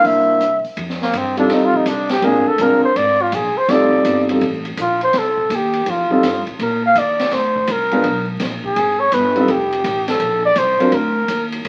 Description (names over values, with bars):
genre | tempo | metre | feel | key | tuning
jazz, small-group swing and bop | 166 BPM | 4/4 | swing 66% on 8ths | F mixolydian | A4 = 440 Hz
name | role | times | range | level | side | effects
warm flugelhorn | melody | 0.0-11.5 s | Bb3 to F5 | -18 LUFS | equal | none
dark grand piano | accompaniment | 0.0-10.9 s | Gb3 to C5 | -19 LUFS | equal | none
upright bass | bass | 0.0-11.7 s | F1 to Bb2 | -28 LUFS | equal | none
open jazz drum kit | drums | 0.0-11.7 s | hi-hat, kick drum, ride cymbal, rim click, snare drum | -29 LUFS | equal | none
room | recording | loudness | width
moderate studio reverb, RT60 0.9 s | very old 78 rpm record, vinyl crackle | -17 LUFS | mono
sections
0.8-11.7 A section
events
flugelhorn solo 0.8-11.7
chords
0.1 C9; 0.8 F9; 2.2 Bb9; 3.7 F9; 5.1 Cm; 5.9 F9; 6.6 Bbadd9; 8.0 G(b9); 9.5 Fadd9; 10.9 D(#5, no3)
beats
0.05 0.41 | 0.78 1.15 1.51 1.87 | 2.24 2.60 2.97 3.33 | 3.69 4.06 4.42 4.78 | 5.15 5.51 5.87 6.24 | 6.60 6.96 7.32 7.68 | 8.04 8.41 8.77 9.13 | 9.49 9.85 10.21 10.57 | 10.93 11.29 11.66